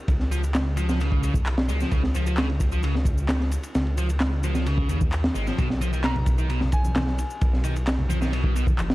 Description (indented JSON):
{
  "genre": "breakbeat, breaks",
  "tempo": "131 BPM",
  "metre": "4/4",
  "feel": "straight",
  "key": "Db mixolydian",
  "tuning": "A4 = 444 Hz",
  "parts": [
    { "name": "detuned saw bass", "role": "bass", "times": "0.1-8.9 s", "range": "Gb1 to Eb2", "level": "-25 LUFS", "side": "equal", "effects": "none" },
    { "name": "crunchy breakbeat drum kit", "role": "drums", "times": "0.1-8.9 s", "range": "kick drum, ride cymbal, snare drum", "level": "-25 LUFS", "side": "equal", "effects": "none" },
    { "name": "electronic shaker and handclaps", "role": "drums", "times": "0.1-8.9 s", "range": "none", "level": "-36 LUFS", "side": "equal", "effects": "none" },
    { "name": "overdriven electric guitar", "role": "riff", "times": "0.3-8.7 s", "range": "Cb3 to Ab3", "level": "-31 LUFS", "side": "equal", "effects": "tape echo" },
    { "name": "soft synth bell", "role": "melody", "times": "6.0-7.4 s", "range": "Ab5 to Bb5", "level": "-35 LUFS", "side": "equal", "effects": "chorus, AM radio sound, vintage 12-bit sampler grit, tape echo" },
    { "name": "congas", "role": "percussion", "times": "6.2-8.9 s", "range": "none", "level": "-33 LUFS", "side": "left 1 dB", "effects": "none" }
  ],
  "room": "little or no reverb",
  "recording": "dark, warm production, vinyl crackle",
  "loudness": "-21 LUFS",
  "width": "side -18 dB against mid",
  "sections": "0.0-8.9 A section",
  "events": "none",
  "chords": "0.0 Db; 5.6 N.C.",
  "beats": "| 0.09 0.55 1.00 1.46 | 1.92 2.38 2.83 3.29 | 3.75 4.21 4.67 5.12 | 5.58 6.04 6.50 6.96 | 7.42 7.87 8.33 8.79"
}